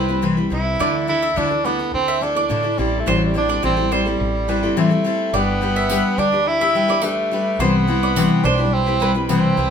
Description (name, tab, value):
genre	acoustic pop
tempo	106 BPM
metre	4/4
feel	straight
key	G major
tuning	A4 = 440 Hz
part	breathy tenor saxophone	melody	0.0-9.7 s	F#3 to E4	-21 LUFS	right 2 dB	none
part	picked steel-string acoustic guitar	accompaniment	0.0-9.7 s	A2 to B4	-20 LUFS	left 3 dB	none
part	mandolin	arpeggios	0.0-9.4 s	B4 to E5	-24 LUFS	right 3 dB	none
part	woody fretless electric bass	bass	0.0-9.7 s	G1 to A2	-25 LUFS	equal	none
part	tambourine	percussion	5.9-9.4 s	none	-30 LUFS	right 5 dB	none
room	wet studio reverb, RT60 0.5 s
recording	band playing live in one room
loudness	-16 LUFS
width	side -7 dB against mid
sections	0.0-5.3 A section; 5.3-9.7 B section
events	none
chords	0.0 Cmaj7; 0.8 Dsus2; 2.8 Am7; 5.3 G; 7.6 Cmaj7